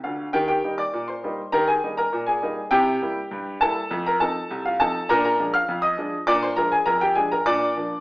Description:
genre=ragtime piano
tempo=101 BPM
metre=2/4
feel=straight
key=Eb major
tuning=A4 = 441 Hz
part: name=clear grand piano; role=solo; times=0.0-8.0 s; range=C2 to F6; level=-20 LUFS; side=equal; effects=none
room=wet club reverb, RT60 0.9 s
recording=heard from further back in the room, AM radio sound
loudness=-20 LUFS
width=side -22 dB against mid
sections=0.3-8.0 A section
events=grand piano fill 0.0-0.3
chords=0.3 Eb; 2.7 C7; 3.9 F7; 5.1 Bb7; 7.5 Bb

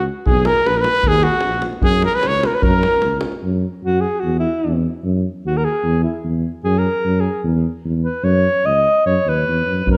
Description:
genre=balkan folk, Balkan brass band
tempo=150 BPM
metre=2/4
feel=swing 53% on 16ths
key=F# mixolydian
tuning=A4 = 440 Hz
part: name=mellow trumpet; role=melody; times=0.0-3.2 s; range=F#4 to C#5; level=-20 LUFS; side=equal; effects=none
part: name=mellow alto saxophone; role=second line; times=0.0-10.0 s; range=E4 to D#5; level=-22 LUFS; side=equal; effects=none
part: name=dark tuba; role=bass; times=0.0-10.0 s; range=A#1 to F#2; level=-22 LUFS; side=equal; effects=none
part: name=davul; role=percussion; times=0.3-3.4, 9.9-10.0 s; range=none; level=-23 LUFS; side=equal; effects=none
room=moderate recital hall reverb, RT60 1.7 s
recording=none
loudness=-18 LUFS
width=mono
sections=0.0-3.4 A section; 3.4-10.0 B section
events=alto saxophone solo 3.4-10.0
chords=0.3 G#madd9; 1.0 D#m; 1.8 F#; 3.4 F#sus2; 4.2 Esus2; 5.0 D#madd11; 5.8 E; 6.6 F#; 7.4 E5; 8.3 F#5; 9.1 C#m11/D#

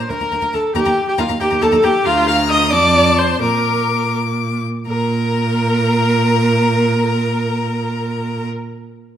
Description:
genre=quick classical-period movement for string quartet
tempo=81-92 BPM (dotted quarters)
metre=6/8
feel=rubato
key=Bb major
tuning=A4 = 440 Hz
part: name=clear violin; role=melody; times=0.0-8.5 s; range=A5 to D6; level=-24 LUFS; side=left 10 dB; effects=none
part: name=rich viola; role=accompaniment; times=0.0-8.5 s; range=F4 to F5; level=-18 LUFS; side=right 1 dB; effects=none
part: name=clear cello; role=bass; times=0.0-8.5 s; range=D2 to Bb2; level=-18 LUFS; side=right 2 dB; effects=none
part: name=warm violin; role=second line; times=0.1-8.5 s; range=Bb4 to F6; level=-24 LUFS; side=left 5 dB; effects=none
room=wet recital hall reverb, RT60 1.5 s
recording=none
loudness=-14 LUFS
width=side -10 dB against mid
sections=0.0-4.9 A section; 4.9-7.7 B section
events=slowing down 1.4-4.9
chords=0.1 Bb/D; 0.8 Eb5; 2.1 Bb/D; 2.7 F; 3.4 Bb; 4.9 N.C.

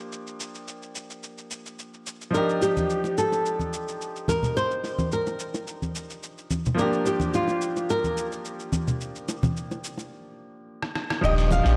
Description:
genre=sunset chillout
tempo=108 BPM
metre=4/4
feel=straight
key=Eb major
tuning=A4 = 439 Hz
part: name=bright concert grand piano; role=accompaniment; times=0.0-11.8 s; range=F3 to G4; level=-34 LUFS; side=equal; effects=none
part: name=dusty soul sampler-style drum kit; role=drums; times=0.1-11.8 s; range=cabasa, claves, crash cymbal, hi-hat, rim click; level=-37 LUFS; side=equal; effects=low-pass filter on perc, low-pass filter on snare, low-pass filter on cymbals, low-pass filter on hats
part: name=flamenco guitar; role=melody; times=2.3-11.8 s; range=F4 to F5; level=-29 LUFS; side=equal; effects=tape echo
part: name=bongos and congas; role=percussion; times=2.6-11.6 s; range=none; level=-31 LUFS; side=equal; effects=none
part: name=warm sub bass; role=bass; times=11.2-11.8 s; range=Eb1 to Bb1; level=-23 LUFS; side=equal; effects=none
part: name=electronic kick drum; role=drums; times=11.2-11.3 s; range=none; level=-36 LUFS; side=equal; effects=none
room=moderate lush hall reverb, RT60 1.9 s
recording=worn, warbling old tape, cassette tape, warbly pitch drift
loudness=-27 LUFS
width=mono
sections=0.0-11.2 A section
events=filter sweep on drum 0.0-11.2; break 10.1-11.2; drum fill 10.8-11.2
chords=0.0 Bb6; 2.3 Ebmaj9; 6.8 Bb6; 11.2 Ebmaj9

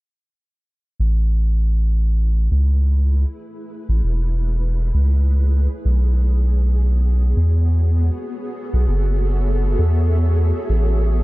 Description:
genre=ambient dub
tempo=99 BPM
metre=4/4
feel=swing 53% on 16ths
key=unclear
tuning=A4 = 440 Hz
part: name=granular cloud pad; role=sustained chords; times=2.3-11.2 s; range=A3 to E5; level=-28 LUFS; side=equal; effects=built-in reverb
part: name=soft dub sub bass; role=bass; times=1.0-11.2 s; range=E1 to E2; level=-16 LUFS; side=equal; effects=none
room=little or no reverb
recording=dark, warm production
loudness=-16 LUFS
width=side -20 dB against mid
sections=1.0-11.2 A section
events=fade-in on ambient pad 1.0-11.2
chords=1.0 Amaj9; 5.8 B13sus4; 10.7 Amaj9

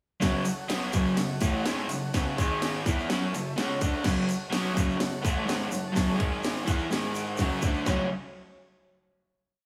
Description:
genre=garage rock duo or trio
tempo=125 BPM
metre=4/4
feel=straight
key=F# minor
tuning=A4 = 440 Hz
part: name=overdriven combo organ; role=sustained chords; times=0.2-8.1 s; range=G#4 to A5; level=-41 LUFS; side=equal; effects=none
part: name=raw garage guitar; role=riff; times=0.2-8.1 s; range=F#2 to F#4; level=-30 LUFS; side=equal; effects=overdrive, spring reverb
part: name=garage drum kit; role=drums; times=0.2-8.0 s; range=crash cymbal, handclaps, kick drum, ride cymbal, snare drum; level=-32 LUFS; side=equal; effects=overdrive
part: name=egg shaker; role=percussion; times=0.2-8.1 s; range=none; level=-45 LUFS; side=equal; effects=none
room=moderate large studio reverb, RT60 1.1 s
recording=band playing live in one room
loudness=-28 LUFS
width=mono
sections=0.2-7.9 riff; 7.9-9.7 final chord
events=kick and snare drop out 7.4-7.9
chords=0.2 F#m; 2.4 G#5; 2.8 F#m; 6.2 G#5; 6.7 F#m; 6.9 G#5; 7.4 F#m

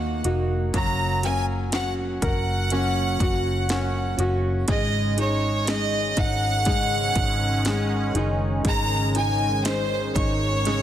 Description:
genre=pop ballad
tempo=60 BPM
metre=4/4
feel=straight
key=unclear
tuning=A4 = 436 Hz
part: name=bright chamber violin section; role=melody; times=0.0-10.8 s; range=C5 to Bb5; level=-26 LUFS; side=equal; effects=none
part: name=clear grand piano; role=accompaniment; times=0.0-10.8 s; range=Eb3 to Bb4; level=-29 LUFS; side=left 4 dB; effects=none
part: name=fingerpicked plugged-in steel-string acoustic guitar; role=arpeggios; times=0.0-10.8 s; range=Gb2 to Ab4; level=-31 LUFS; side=right 5 dB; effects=none
part: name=vintage muted fingered electric bass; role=bass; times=0.0-10.8 s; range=F1 to Eb2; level=-26 LUFS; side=equal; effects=none
part: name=house drum kit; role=drums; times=0.2-10.8 s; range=hi-hat, kick drum, snare drum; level=-27 LUFS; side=equal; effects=none
part: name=sweeping resonant pad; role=sustained chords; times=4.7-10.8 s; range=Eb3 to Db4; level=-32 LUFS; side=equal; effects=chorus
room=light reverb, digital ambience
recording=dense, heavily limited modern master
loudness=-21 LUFS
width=side -11 dB against mid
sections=0.0-10.8 A section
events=drum fill 10.7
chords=0.0 Ebm; 0.7 Gb; 4.7 Absus4

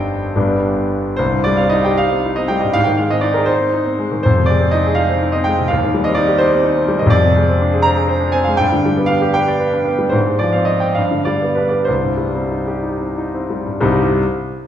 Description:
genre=classical, romantic character piece for solo piano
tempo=60-85 BPM (dotted quarters)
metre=6/8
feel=rubato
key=C minor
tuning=A4 = 440 Hz
part: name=clear concert grand piano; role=solo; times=0.0-14.2 s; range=G1 to Bb5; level=-14 LUFS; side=equal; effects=none
room=wet recital hall reverb, RT60 1.4 s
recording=recorded in a church or concert hall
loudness=-14 LUFS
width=side -10 dB against mid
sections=0.0-1.2 A section; 1.2-13.8 B section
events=slowing down 9.4-13.8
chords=0.4 G; 1.2 Cm; 2.7 Ab; 4.2 Fm7; 5.7 Cm/Eb; 7.1 Dm7b5/F; 8.6 G; 10.2 Fm/Ab; 11.0 G; 11.9 Cm

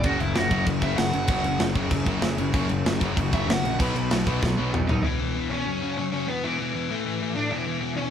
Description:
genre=punk rock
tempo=192 BPM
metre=4/4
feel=straight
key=unclear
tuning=A4 = 442 Hz
part: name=crunchy overdriven guitar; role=melody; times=0.0-8.1 s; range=E3 to B5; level=-28 LUFS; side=right 1 dB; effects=none
part: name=distorted electric guitar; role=riff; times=0.0-5.0 s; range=F#2 to B3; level=-31 LUFS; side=right 1 dB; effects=distortion
part: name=sludgy distorted guitar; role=riff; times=0.0-8.1 s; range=E2 to B3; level=-28 LUFS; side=left 7 dB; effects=overdrive
part: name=tight distorted guitar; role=riff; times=0.0-5.0 s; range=F#2 to B3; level=-32 LUFS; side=right 5 dB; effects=distortion
part: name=fuzz picked electric bass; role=bass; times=0.0-5.0 s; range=F#1 to D#2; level=-29 LUFS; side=equal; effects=overdrive
part: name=tight metal drum kit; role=drums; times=0.0-5.0 s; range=crash cymbal, kick drum, snare drum, toms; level=-26 LUFS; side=equal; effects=none
room=moderate studio reverb, RT60 0.5 s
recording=band playing live in one room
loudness=-22 LUFS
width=side -8 dB against mid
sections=0.0-5.0 A section; 5.0-8.1 B section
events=overdriven electric guitar solo 0.0-5.0; drum fill 4.4-5.0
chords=0.0 F#5; 3.8 B; 5.0 E5; 5.7 F#5; 6.3 E5; 6.9 A5; 7.5 E5

